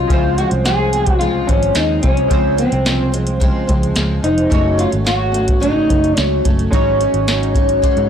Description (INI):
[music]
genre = indie pop, bedroom pop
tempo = 109 BPM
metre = 4/4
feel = straight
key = Db major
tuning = A4 = 441 Hz
[part]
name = electric guitar through a small old amp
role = melody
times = 0.0-8.1 s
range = C4 to Ab4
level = -17 LUFS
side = left 1 dB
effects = lush chorus, tape echo
[part]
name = picked steel-string acoustic guitar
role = accompaniment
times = 0.0-8.1 s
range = Gb2 to Eb4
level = -22 LUFS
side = equal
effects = analog chorus, vibrato effect
[part]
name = vintage muted picked electric bass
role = bass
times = 0.0-8.1 s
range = F1 to Ab2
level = -19 LUFS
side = equal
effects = none
[part]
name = chorused retro synth keys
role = accompaniment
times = 0.1-8.1 s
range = Ab3 to Db5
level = -26 LUFS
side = right 6 dB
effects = cassette tape
[part]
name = soft vintage rhythm box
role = drums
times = 0.1-8.1 s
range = hi-hat, kick drum, snare drum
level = -18 LUFS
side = equal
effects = none
[sound]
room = light reverb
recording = blown-out, overdriven recording, overdrive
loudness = -13 LUFS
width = side -8 dB against mid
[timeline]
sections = 0.0-8.1 A section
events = none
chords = 0.1 Dbmaj7; 4.5 Gbm; 6.7 Ab7sus4